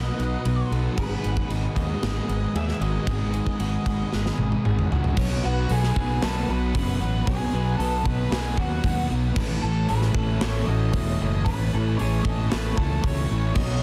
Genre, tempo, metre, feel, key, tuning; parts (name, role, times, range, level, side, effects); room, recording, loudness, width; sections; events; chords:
rock, shoegaze and dream pop; 114 BPM; 4/4; straight; B mixolydian; A4 = 440 Hz
octave-fuzz lead guitar; melody; 0.0-13.8 s; F#4 to E5; -36 LUFS; equal; distortion, analog delay
soft string machine; sustained chords; 0.0-13.8 s; A4 to D#6; -42 LUFS; equal; phaser, ensemble chorus
direct-recorded clean electric guitar; arpeggios; 0.0-13.8 s; F#4 to C#5; -40 LUFS; equal; lush chorus, analog delay
distorted electric guitar; riff; 0.0-13.8 s; G#2 to B3; -36 LUFS; equal
electric guitar through a small old amp; riff; 0.0-5.2, 13.5-13.8 s; G#2 to G#4; -40 LUFS; equal
thick fuzz guitar; riff; 0.0-13.8 s; G#2 to B3; -32 LUFS; equal; distortion, lush chorus
fuzz fingered electric bass; bass; 0.0-13.8 s; E1 to D#2; -28 LUFS; equal; overdrive
gated 80s drum kit; drums; 0.2-13.7 s; crash cymbal, hi-hat, kick drum, ride cymbal, snare drum, toms; -30 LUFS; equal
light reverb, small room ambience; dense, heavily limited modern master; -24 LUFS; mono
0.0-5.2 A section; 5.2-13.8 B section
drum fill 4.1-5.2
0.0 B; 1.0 G#m7; 5.2 B7; 9.4 Amaj7